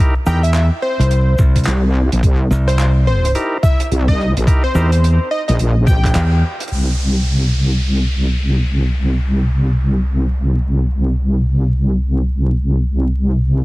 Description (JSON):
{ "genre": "glitch hop", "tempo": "107 BPM", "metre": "4/4", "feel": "swing 60% on 16ths", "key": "unclear", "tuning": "A4 = 438 Hz", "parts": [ { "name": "overdriven tonewheel organ", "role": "stabs", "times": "0.0-4.9 s", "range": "D#4 to Bb4", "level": "-24 LUFS", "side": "equal", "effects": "vintage 12-bit sampler grit, sidechain pumping, low-pass filter, digital delay" }, { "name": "plucky unison lead", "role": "melody", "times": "0.3-6.4 s", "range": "C5 to G5", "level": "-22 LUFS", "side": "equal", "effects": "digital delay" }, { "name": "modern bright fingered electric bass", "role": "bass", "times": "0.3-6.4 s", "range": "C2 to E2", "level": "-13 LUFS", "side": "equal", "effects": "none" }, { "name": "compact cocktail drum kit", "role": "drums", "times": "0.3-6.7 s", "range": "handclaps, hi-hat, rim click, shaker", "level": "-26 LUFS", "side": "right 1 dB", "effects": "none" }, { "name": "electronic kick drum", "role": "drums", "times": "1.4-6.1 s", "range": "none", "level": "-14 LUFS", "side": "equal", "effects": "none" }, { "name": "wobble bass", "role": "bass", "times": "1.7-13.6 s", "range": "Bb1 to C2", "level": "-14 LUFS", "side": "equal", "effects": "chorus, tube saturation" }, { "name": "downlifter", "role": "sound effects", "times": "6.7-11.2 s", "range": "none", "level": "-28 LUFS", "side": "equal", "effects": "none" } ], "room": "little or no reverb", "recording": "heavily compressed radio sound, vinyl crackle", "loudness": "-13 LUFS", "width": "side -20 dB against mid", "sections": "0.0-6.7 A section; 6.7-13.6 B section", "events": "band accent 6.2", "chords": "0.0 C7#9; 6.7 C5" }